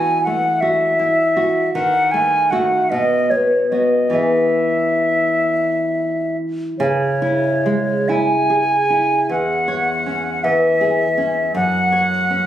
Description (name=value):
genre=romantic duo for flute and classical guitar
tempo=44-55 BPM (dotted quarters)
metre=6/8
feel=rubato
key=E major, C# minor from 6.8 s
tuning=A4 = 437 Hz
part: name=concert flute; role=melody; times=0.0-12.5 s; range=C#5 to G#5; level=-17 LUFS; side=equal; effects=none
part: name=nylon-string guitar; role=accompaniment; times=0.0-12.5 s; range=E2 to C#5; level=-19 LUFS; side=equal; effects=none
room=moderate recital hall reverb, RT60 1.5 s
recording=recorded on a phone in the room, club reverb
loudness=-15 LUFS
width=side -11 dB against mid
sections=0.0-6.8 A section; 6.8-12.5 B section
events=none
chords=0.0 F#m7/E; 1.7 D#dim; 2.9 B5; 4.1 E; 6.8 C#m; 9.3 C#m/E; 11.6 F#5